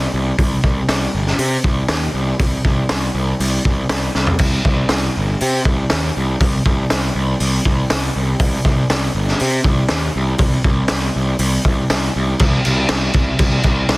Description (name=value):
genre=hard rock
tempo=120 BPM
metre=4/4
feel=straight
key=C minor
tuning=A4 = 440 Hz
part: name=fuzz picked electric bass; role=bass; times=0.0-14.0 s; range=G1 to C3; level=-18 LUFS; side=equal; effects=overdrive
part: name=raw garage drum kit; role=drums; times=0.4-14.0 s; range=crash cymbal, hi-hat, kick drum, snare drum, toms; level=-17 LUFS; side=equal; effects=none
room=little or no reverb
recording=dense, heavily limited modern master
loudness=-14 LUFS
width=side -23 dB against mid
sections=0.0-12.4 A section; 12.4-14.0 B section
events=drum fill 4.2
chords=none